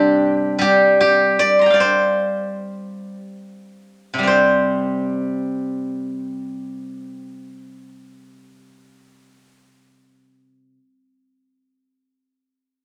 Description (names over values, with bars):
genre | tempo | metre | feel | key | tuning
chinese traditional, Chinese solo plucked strings | 49-82 BPM | 2/4 | rubato | C shang mode | A4 = 440 Hz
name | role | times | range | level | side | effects
steel-string zither | solo | 0.0-10.8 s | C3 to C6 | -19 LUFS | equal | none
room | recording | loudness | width
moderate studio ambience, RT60 0.4 s | none | -18 LUFS | mono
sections
0.0-4.3 A section; 4.3-9.0 B section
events
slowing down 0.6-4.3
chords
none